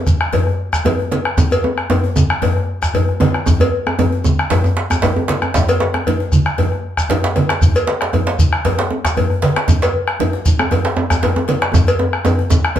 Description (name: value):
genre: west african traditional, West African drum ensemble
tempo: 116 BPM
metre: 4/4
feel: swing 54% on 16ths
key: none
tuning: none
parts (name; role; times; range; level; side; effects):
- bombo; percussion; 0.1-12.8 s; none; -17 LUFS; equal; none
- congas; percussion; 0.1-12.8 s; none; -21 LUFS; right 2 dB; none
- shekere; percussion; 0.1-12.6 s; none; -24 LUFS; left 1 dB; none
- cowbell; percussion; 0.3-12.8 s; none; -21 LUFS; left 1 dB; none
- djembe; percussion; 0.3-12.8 s; none; -21 LUFS; left 2 dB; none
- djembe; percussion; 0.9-12.8 s; none; -20 LUFS; right 2 dB; none
room: wet studio reverb, RT60 0.7 s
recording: band playing live in one room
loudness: -14 LUFS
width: side -10 dB against mid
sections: 0.0-12.8 A section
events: drum fill 11.7-12.8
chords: none